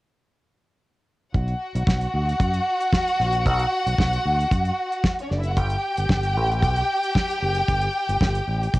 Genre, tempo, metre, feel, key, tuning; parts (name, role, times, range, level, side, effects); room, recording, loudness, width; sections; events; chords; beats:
disco; 114 BPM; 4/4; straight; A4 = 441 Hz
rich studio violin section; second line; 1.3-8.8 s; C#4 to G5; -23 LUFS; equal; cassette tape
fingered electric bass; bass; 1.3-8.8 s; F#1 to F#2; -24 LUFS; equal
damped 70s drum kit; drums; 1.3-8.8 s; hi-hat, kick drum, snare drum; -22 LUFS; equal; cassette tape
light reverb, small room ambience; home recording on cassette; -20 LUFS; side -19 dB against mid
1.3-8.8 A section
1.3 Bm; 5.6 N.C.
| 1.35 1.88 2.40 2.93 | 3.46 3.99 4.51 5.04 | 5.57 6.10 6.63 7.16 | 7.68 8.21 8.74